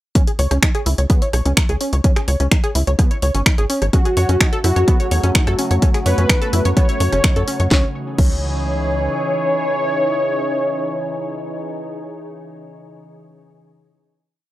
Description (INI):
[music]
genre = melodic techno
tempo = 127 BPM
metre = 4/4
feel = straight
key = C# minor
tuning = A4 = 440 Hz
[part]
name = tight sequenced synth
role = arpeggios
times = 0.2-8.3 s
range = B3 to C#5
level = -24 LUFS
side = equal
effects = chorus, sidechain pumping, tape echo
[part]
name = electronic kick drum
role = drums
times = 0.2-8.3 s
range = none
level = -15 LUFS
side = equal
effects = overdrive
[part]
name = house drum kit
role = drums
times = 0.2-8.3 s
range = crash cymbal, finger snaps, hi-hat, rim click, snare drum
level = -21 LUFS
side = equal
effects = overdrive
[part]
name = tight sequencer bass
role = bass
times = 0.4-9.1 s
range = F#1 to F#2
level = -18 LUFS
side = equal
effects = sidechain pumping
[part]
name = wide unison lead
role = melody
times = 3.9-12.2 s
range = F#4 to C#5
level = -21 LUFS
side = equal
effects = sidechain pumping, tape echo
[part]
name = evolving wavetable pad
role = sustained chords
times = 4.6-11.7 s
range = C#3 to G#4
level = -26 LUFS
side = equal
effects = phaser, built-in reverb, sidechain pumping
[sound]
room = little or no reverb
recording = dry, gritty hardware recording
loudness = -15 LUFS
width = side -15 dB against mid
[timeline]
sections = 0.2-7.7 drop; 7.7-11.5 final chord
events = drop 0.2-7.7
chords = 0.2 C#5; 3.9 F#m; 7.7 C#madd9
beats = | 0.15 0.63 1.10 1.57 | 2.04 2.52 2.99 3.46 | 3.93 4.41 4.88 5.35 | 5.82 6.29 6.77 7.24 | 7.71 8.19 8.66 9.13 | 9.60 10.07 10.55 11.02